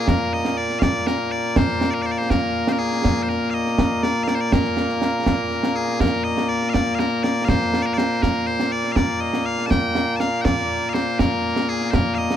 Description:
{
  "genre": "scottish traditional, Scottish pipe music",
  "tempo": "81 BPM (dotted quarters)",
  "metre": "6/8",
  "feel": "straight",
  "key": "Bb mixolydian",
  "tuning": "A4 = 439 Hz",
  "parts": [
    { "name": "loud bright bagpipes", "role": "melody", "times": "0.0-12.4 s", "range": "Bb2 to A5", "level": "-21 LUFS", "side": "left 1 dB", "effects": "none" },
    { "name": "concert snare drum and concert bass drum", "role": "drums", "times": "0.1-12.4 s", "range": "none", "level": "-22 LUFS", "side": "right 2 dB", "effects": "none" }
  ],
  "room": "light reverb",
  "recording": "dark, warm production",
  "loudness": "-18 LUFS",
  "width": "side -10 dB against mid",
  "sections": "0.0-6.0 A section; 6.0-12.4 A section",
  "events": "none",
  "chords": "none"
}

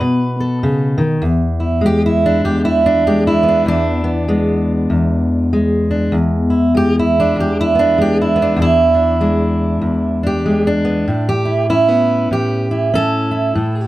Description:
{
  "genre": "acoustic country blues, solo or duo",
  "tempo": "97 BPM",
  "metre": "4/4",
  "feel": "swing 62% on 8ths",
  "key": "E mixolydian",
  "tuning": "A4 = 441 Hz",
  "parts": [
    { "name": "fingerpicked steel-string acoustic guitar", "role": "solo", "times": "0.0-13.9 s", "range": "E2 to B4", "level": "-13 LUFS", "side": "equal", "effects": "none" }
  ],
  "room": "little or no reverb",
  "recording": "close, detailed microphones",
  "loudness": "-13 LUFS",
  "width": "side -16 dB against mid",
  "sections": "0.0-1.2 A section; 1.2-13.9 B section",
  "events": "steel-string acoustic guitar solo 0.0-1.2",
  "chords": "0.0 B7; 1.2 E7; 11.1 A7"
}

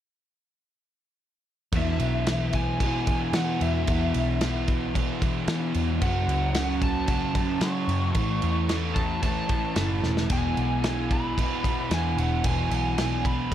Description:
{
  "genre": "rock, shoegaze and dream pop",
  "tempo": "112 BPM",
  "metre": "4/4",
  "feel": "straight",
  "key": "E major",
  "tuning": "A4 = 440 Hz",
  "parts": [
    { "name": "fuzz guitar", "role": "riff", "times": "1.7-13.5 s", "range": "E2 to A3", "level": "-28 LUFS", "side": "equal", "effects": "distortion, analog chorus" },
    { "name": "vintage muted picked electric bass", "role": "bass", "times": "1.7-13.5 s", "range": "E1 to F#3", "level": "-28 LUFS", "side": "equal", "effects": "none" },
    { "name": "loose indie drum kit", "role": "drums", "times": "1.7-13.5 s", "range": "crash cymbal, kick drum, snare drum, splash cymbal", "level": "-28 LUFS", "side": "equal", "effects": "none" },
    { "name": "lead guitar through a small cranked amp", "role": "melody", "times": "1.8-13.5 s", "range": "E5 to C#6", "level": "-32 LUFS", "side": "left 1 dB", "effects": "overdrive, digital delay" }
  ],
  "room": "small room ambience",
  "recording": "dark, warm production",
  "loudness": "-23 LUFS",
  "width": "side -11 dB against mid",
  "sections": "1.7-13.5 A section",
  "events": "drum fill 10.0",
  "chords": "1.7 E5; 6.0 F#m; 8.2 A; 10.3 E"
}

